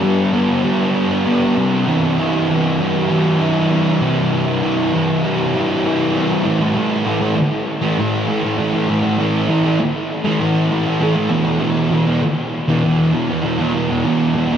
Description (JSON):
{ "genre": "rock", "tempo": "98 BPM", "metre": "4/4", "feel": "straight", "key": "unclear", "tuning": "A4 = 440 Hz", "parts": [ { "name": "thick fuzz guitar", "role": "solo", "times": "0.0-14.6 s", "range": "E2 to E4", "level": "-15 LUFS", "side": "equal", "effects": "distortion, wide subtle chorus, tape echo" } ], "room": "wet huge ambient reverb, RT60 7.1 s", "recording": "dreamy mix soaked in reverb", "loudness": "-15 LUFS", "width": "side -8 dB against mid", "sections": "0.0-6.4 A section; 6.4-14.6 B section", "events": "none", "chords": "0.0 G; 1.6 C; 6.4 A5; 11.3 E5", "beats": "0.33 0.94 | 1.55 2.17 2.78 3.39 | 4.00 4.62 5.23 5.84 | 6.45 7.06 7.67 8.28 | 8.88 9.49 10.10 10.71 | 11.31 11.92 12.53 13.14 | 13.74 14.35" }